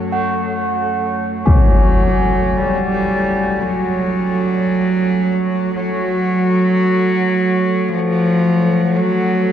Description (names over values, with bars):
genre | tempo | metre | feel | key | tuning
dark ambient drone | free time | none | none | unclear | A4 = 439 Hz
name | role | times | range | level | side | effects
warm cello | melody | 0.0-9.5 s | E#3 to G3 | -16 LUFS | right 1 dB | ping-pong delay
deep dark ambient pad | sustained chords | 0.0-9.5 s | A4 to F#5 | -28 LUFS | left 1 dB | chorus, built-in reverb
tubular bells | arpeggios | 0.0-9.5 s | C#4 to F#4 | -23 LUFS | right 1 dB | ping-pong delay
deep rumbling drone | drone | 0.0-9.5 s | F#2 to A3 | -28 LUFS | left 2 dB | none
bronze singing bowl | texture | 0.0-1.5 s | C#4 to C#5 | -42 LUFS | left 1 dB | none
impact | percussion | 1.5-1.7 s | none | -16 LUFS | left 1 dB | low-pass filter on sfx
room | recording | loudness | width
wet huge ambient reverb, RT60 7.5 s | worn, warbling old tape, cassette tape, warbly pitch drift | -14 LUFS | side -10 dB against mid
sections
0.0-1.5 A section; 1.5-9.5 B section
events
none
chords
0.0 F#m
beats
free time